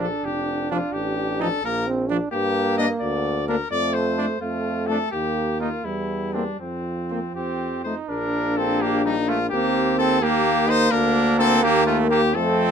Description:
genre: classical, brass quintet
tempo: 84 BPM (dotted quarters)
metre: 6/8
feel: rubato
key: Bb major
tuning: A4 = 438 Hz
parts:
  - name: clear trumpet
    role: melody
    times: 0.0-12.7 s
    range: C4 to Eb5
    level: -24 LUFS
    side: left 5 dB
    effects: none
  - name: warm trumpet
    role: second line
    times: 0.0-12.7 s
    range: G3 to Eb4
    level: -26 LUFS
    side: right 8 dB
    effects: none
  - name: warm French horn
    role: accompaniment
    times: 0.0-12.7 s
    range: F3 to D4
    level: -26 LUFS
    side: left 5 dB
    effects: none
  - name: warm trombone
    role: accompaniment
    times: 0.0-12.7 s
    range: F3 to D4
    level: -26 LUFS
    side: right 4 dB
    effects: none
  - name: clear bass trombone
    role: bass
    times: 0.0-12.7 s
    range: F1 to G2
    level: -28 LUFS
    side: right 1 dB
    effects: none
room: light reverb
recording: close, detailed microphones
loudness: -20 LUFS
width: side -7 dB against mid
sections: 0.0-8.1 A section; 8.1-12.7 B section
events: none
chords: 0.0 Bb; 0.9 N.C.; 1.6 Bb; 2.3 Gm; 3.7 Dm/F; 5.1 Eb; 5.9 C7/E (rootless); 6.6 F5; 8.1 Bb; 9.5 Eb; 10.9 Bb/D; 11.6 Eb5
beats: 0.23 | 0.93 1.63 | 2.32 3.02 | 3.71 4.41 | 5.13 5.86 | 6.61 7.36 | 8.11 8.83 | 9.53 10.22 | 10.92 11.64 | 12.37

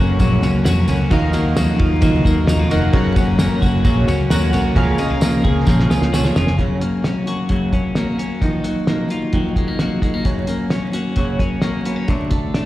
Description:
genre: jangly indie pop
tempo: 131 BPM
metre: 4/4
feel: straight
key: F# major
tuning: A4 = 440 Hz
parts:
  - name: chorused retro synth keys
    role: accompaniment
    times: 0.0-6.6 s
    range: F#4 to F#5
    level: -26 LUFS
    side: right 1 dB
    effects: slapback echo
  - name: fingerpicked steel-string acoustic guitar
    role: accompaniment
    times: 0.0-12.7 s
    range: F#2 to G#4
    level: -22 LUFS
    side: right 3 dB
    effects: none
  - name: twelve-string electric guitar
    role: arpeggios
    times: 0.0-12.7 s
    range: F#2 to G#4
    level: -20 LUFS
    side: left 3 dB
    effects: none
  - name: vintage muted fingered electric bass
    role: bass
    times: 0.0-6.6 s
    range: E#1 to E#2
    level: -19 LUFS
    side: equal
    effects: none
  - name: cloth-damped thuddy drum kit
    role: drums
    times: 0.2-12.7 s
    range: hi-hat, kick drum, ride cymbal, snare drum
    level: -20 LUFS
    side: equal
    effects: none
  - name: tambourine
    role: percussion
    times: 0.2-6.5 s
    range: none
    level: -35 LUFS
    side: right 2 dB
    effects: none
room: light reverb, small room ambience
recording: live gig heard through the venue's PA, recital hall reverb, vinyl crackle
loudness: -15 LUFS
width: side -15 dB against mid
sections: 0.0-6.6 A section; 6.6-12.7 B section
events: drum fill 5.7-6.6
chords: 0.0 F#; 1.1 D#madd9; 2.9 F#; 4.8 C#6; 6.6 F#; 8.4 D#madd9; 10.3 F#; 12.1 D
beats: 0.20 0.66 | 1.11 1.57 2.02 2.48 | 2.94 3.39 3.85 4.30 | 4.76 5.21 5.67 6.13 | 6.58 7.04 7.50 7.96 | 8.42 8.88 9.33 9.79 | 10.25 10.71 11.17 11.63 | 12.09 12.55

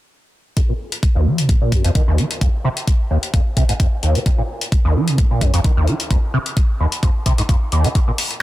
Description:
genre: acid house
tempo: 130 BPM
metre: 4/4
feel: swing 54% on 16ths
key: F phrygian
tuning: A4 = 440 Hz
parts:
  - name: liquid acid bass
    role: riff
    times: 0.6-8.1 s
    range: Eb2 to F3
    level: -19 LUFS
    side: equal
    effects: overdrive, ensemble chorus, sidechain pumping
  - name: electronic hi-hat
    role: drums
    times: 0.6-8.4 s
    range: none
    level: -24 LUFS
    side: left 3 dB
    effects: soft clipping on snare
  - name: electronic kick drum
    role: drums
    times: 0.6-8.1 s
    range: none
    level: -16 LUFS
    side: equal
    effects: none
room: light reverb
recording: dense, heavily limited modern master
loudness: -15 LUFS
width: side -16 dB against mid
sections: 0.6-8.4 A section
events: filter sweep on acid bass 0.6-8.4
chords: none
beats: | 0.57 1.03 1.49 1.95 | 2.41 2.88 3.34 3.80 | 4.26 4.72 5.18 5.64 | 6.11 6.57 7.03 7.49 | 7.95

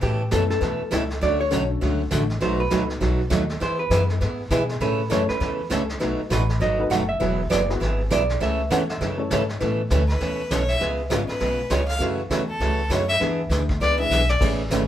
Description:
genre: country, western swing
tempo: 200 BPM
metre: 4/4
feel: swing 62% on 8ths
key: A major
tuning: A4 = 440 Hz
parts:
  - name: vintage hollow-body jazz guitar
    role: second line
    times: 0.0-9.4 s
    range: E4 to F#5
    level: -26 LUFS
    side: right 2 dB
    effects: none
  - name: picked steel-string acoustic guitar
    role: accompaniment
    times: 0.0-14.8 s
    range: B2 to A4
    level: -25 LUFS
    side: right 2 dB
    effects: none
  - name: upright bass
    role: bass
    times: 0.0-14.9 s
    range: E1 to B2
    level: -25 LUFS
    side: equal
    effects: none
  - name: vintage brush drum kit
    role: drums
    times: 0.0-14.9 s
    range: brushed snare drum, crash cymbal, hi-hat, kick drum, snare drum, toms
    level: -30 LUFS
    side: equal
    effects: none
  - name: dark upright piano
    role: accompaniment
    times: 0.3-14.6 s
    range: G#3 to C#5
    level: -31 LUFS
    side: left 3 dB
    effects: none
  - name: clear fiddle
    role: melody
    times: 10.1-14.4 s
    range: A4 to E#5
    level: -24 LUFS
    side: left 1 dB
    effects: none
room: moderate small room reverb, RT60 0.5 s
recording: band playing live in one room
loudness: -20 LUFS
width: side -11 dB against mid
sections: 0.0-9.6 A section; 9.6-14.9 A section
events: hollow-body jazz guitar solo 0.0-9.6; fiddle solo 9.6-14.9; drum fill 14.1-14.4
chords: 0.0 Aadd9; 1.2 Dmaj7; 2.4 B7; 3.6 E; 4.8 A; 6.0 B7; 7.2 Eadd9; 8.4 A; 9.6 Aadd9; 10.8 C#7; 12.0 F#m7; 13.2 E7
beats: | 0.02 0.32 0.61 0.91 | 1.21 1.51 1.81 2.11 | 2.41 2.71 3.01 3.31 | 3.61 3.91 4.21 4.51 | 4.80 5.11 5.41 5.70 | 6.00 6.30 6.60 6.90 | 7.20 7.50 7.80 8.10 | 8.40 8.70 9.00 9.30 | 9.60 9.90 10.20 10.50 | 10.80 11.10 11.40 11.70 | 12.00 12.30 12.60 12.90 | 13.20 13.50 13.80 14.10 | 14.40 14.70

